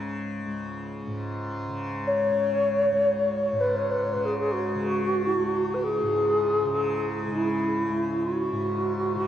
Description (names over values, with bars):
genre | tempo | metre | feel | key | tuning
world meditative, free-time meditation music | free time | none | none | C# minor pentatonic | A4 = 442 Hz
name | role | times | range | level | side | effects
tanpura | drone | 0.0-9.3 s | C#2 to C#3 | -30 LUFS | left 1 dB | none
bass flute | melody | 2.1-9.3 s | E4 to C#5 | -24 LUFS | equal | shimmer reverb, ping-pong delay
bronze singing bowl | texture | 5.3-9.3 s | E4 | -35 LUFS | right 4 dB | shimmer reverb
room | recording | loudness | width
wet church reverb, RT60 3.8 s | worn, warbling old tape, cassette tape, warbly pitch drift | -24 LUFS | side -10 dB against mid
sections
0.0-9.3 A section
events
none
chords
none